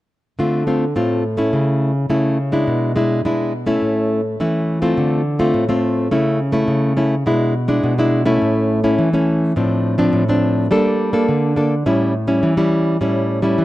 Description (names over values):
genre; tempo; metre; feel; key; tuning
samba; 104 BPM; 4/4; straight; unclear; A4 = 440 Hz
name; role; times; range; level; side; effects
nylon-string guitar; solo; 0.4-13.6 s; A2 to A4; -15 LUFS; equal; none
room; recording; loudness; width
little or no reverb; dry, close 1970s-style studio recording; -15 LUFS; side -16 dB against mid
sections
0.4-5.0 A section; 5.0-13.6 B section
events
none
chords
0.4 Dm7; 1.5 A/C#; 2.7 E7/B; 3.8 A; 5.0 Dm7; 6.1 A/C#; 7.3 E7/B; 8.4 A; 9.6 Dm7/A; 10.7 Gmadd9; 11.9 A7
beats
| 0.39 0.96 1.53 2.11 | 2.68 3.25 3.83 4.40 | 4.97 5.55 6.12 6.70 | 7.27 7.84 8.42 8.99 | 9.57 10.14 10.71 11.29 | 11.86 12.44 13.01 13.59